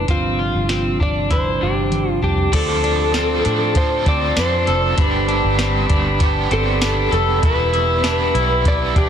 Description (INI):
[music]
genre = dream pop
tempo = 98 BPM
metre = 4/4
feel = straight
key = unclear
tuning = A4 = 439 Hz
[part]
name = mellow tonewheel organ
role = sustained chords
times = 0.0-9.1 s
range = C3 to B5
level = -24 LUFS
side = right 2 dB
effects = slow rotary speaker
[part]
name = electric guitar at the edge of break-up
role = arpeggios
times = 0.0-9.1 s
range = C4 to A4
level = -22 LUFS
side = left 1 dB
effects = wide subtle chorus, tape echo
[part]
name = vintage muted fingered electric bass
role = bass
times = 0.0-9.1 s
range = E1 to A2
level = -22 LUFS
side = equal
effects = none
[part]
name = electric slide guitar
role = melody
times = 0.1-9.1 s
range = F4 to D5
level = -22 LUFS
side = left 1 dB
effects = tape echo
[part]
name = soft vintage rhythm box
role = drums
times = 0.1-9.1 s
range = crash cymbal, hi-hat, kick drum, snare drum, tambourine, toms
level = -20 LUFS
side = equal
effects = none
[part]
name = biting overdriven guitar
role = accompaniment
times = 2.5-9.1 s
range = E2 to A4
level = -25 LUFS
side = right 5 dB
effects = tremolo, analog chorus
[sound]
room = moderate concert hall reverb, RT60 1.9 s, digital ambience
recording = dense, heavily limited modern master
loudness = -15 LUFS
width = side -8 dB against mid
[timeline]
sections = 0.0-2.5 A section; 2.5-9.1 B section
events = drum fill 1.3-2.5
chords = 0.1 G7sus4; 2.5 Dm7; 5.0 G; 7.4 Em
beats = | 0.08 0.69 1.31 1.92 | 2.53 3.14 3.75 4.37 | 4.98 5.59 6.20 6.82 | 7.43 8.04 8.65